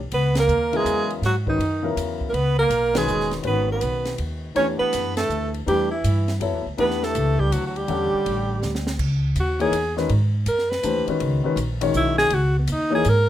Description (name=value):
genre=modal jazz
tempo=162 BPM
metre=3/4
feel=swing 65% on 8ths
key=unclear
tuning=A4 = 442 Hz
part: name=upright bass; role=bass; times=0.0-13.3 s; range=E1 to G#2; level=-24 LUFS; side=equal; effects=none
part: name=clear alto saxophone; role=melody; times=0.1-13.3 s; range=B3 to C#5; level=-23 LUFS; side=right 1 dB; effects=none
part: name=brilliant trombone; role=second line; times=0.1-8.9 s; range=D#3 to C#4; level=-28 LUFS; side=right 6 dB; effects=none
part: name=compact cocktail drum kit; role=drums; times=0.1-13.2 s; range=crash cymbal, hi-hat, kick drum, ride cymbal, snare drum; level=-34 LUFS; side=equal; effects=none
part: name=warm grand piano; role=accompaniment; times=0.7-13.0 s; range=C#3 to F#5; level=-26 LUFS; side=left 4 dB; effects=none
room=moderate club reverb, RT60 0.7 s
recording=minimal, uncompressed stereo recording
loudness=-20 LUFS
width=side -12 dB against mid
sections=0.0-9.0 A section; 9.0-13.3 B section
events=band accent 0.3, 2.9, 5.1; drum fill 8.6-9.0; alto saxophone solo 9.0-13.3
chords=0.1 C#m11; 4.6 Em11; 9.0 C#m11